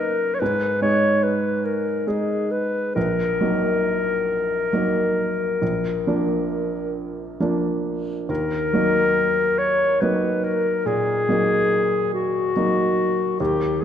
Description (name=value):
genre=classical, romantic duo for clarinet and grand piano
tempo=44-48 BPM (dotted quarters)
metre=12/8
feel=rubato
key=Eb minor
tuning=A4 = 440 Hz
part: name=warm clarinet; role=melody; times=0.0-13.8 s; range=Gb4 to Db5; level=-21 LUFS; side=left 3 dB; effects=none
part: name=clear baby grand piano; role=accompaniment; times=0.0-13.8 s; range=Bb1 to Eb4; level=-23 LUFS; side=right 2 dB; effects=none
room=wet scoring stage reverb, RT60 2.0 s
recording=dark, warm production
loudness=-19 LUFS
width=side -9 dB against mid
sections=0.0-13.8 A section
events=none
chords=0.4 Ab5; 3.0 Ebm/Bb; 5.6 Bb; 8.3 Ebm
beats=0.40 1.65 | 2.96 4.29 5.61 6.96 | 8.29 9.59 10.86 12.14 | 13.39